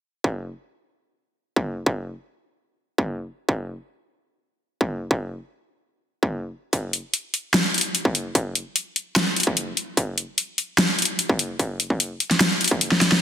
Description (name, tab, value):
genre	heavy wobble dubstep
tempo	148 BPM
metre	4/4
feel	half-time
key	none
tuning	none
part	electronic kick drum	drums	0.2-12.8 s	none	-24 LUFS	equal	distortion, high-pass filter on kick
part	dubstep drum kit	drums	6.7-13.2 s	hi-hat, snare drum	-19 LUFS	equal	high-pass filter on hats, high-pass filter on snare
room	moderate plate reverb, RT60 1.8 s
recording	dense, heavily limited modern master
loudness	-21 LUFS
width	side -9 dB against mid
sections	0.2-13.2 A section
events	drum fill 12.9-13.2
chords	none